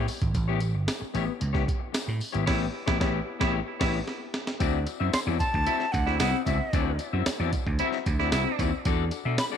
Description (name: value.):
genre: funk.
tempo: 113 BPM.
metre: 4/4.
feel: straight.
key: unclear.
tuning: A4 = 439 Hz.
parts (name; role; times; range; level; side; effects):
electric guitar at the edge of break-up; accompaniment; 0.0-9.6 s; B3 to E5; -31 LUFS; left 14 dB; spring reverb.
vintage slap bass; bass; 0.0-9.4 s; G1 to B2; -28 LUFS; right 1 dB; none.
breakbeat sampler-style drum kit; drums; 0.1-9.5 s; crash cymbal, hi-hat, kick drum, snare drum; -30 LUFS; right 1 dB; none.
tambourine; percussion; 0.1-9.5 s; none; -44 LUFS; left 13 dB; none.
bright baritone saxophone; second line; 2.5-8.7 s; E4; -33 LUFS; right 15 dB; tape echo.
breathy bright jazz flute; melody; 5.1-9.5 s; E5 to C6; -30 LUFS; equal; tape echo.
room: little or no reverb.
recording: 1960s-style stereo with parts hard left and right.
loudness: -24 LUFS.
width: side -8 dB against mid.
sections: 0.0-4.6 A section; 4.6-9.6 B section.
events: band accent 2.5-4.6; drum fill 4.1-4.6.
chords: 0.0 A9; 4.6 D9; 8.9 E9sus4.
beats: | 0.35 0.88 1.41 1.94 | 2.47 3.01 3.54 4.07 | 4.60 5.13 5.67 6.20 | 6.73 7.26 7.79 8.32 | 8.85 9.38.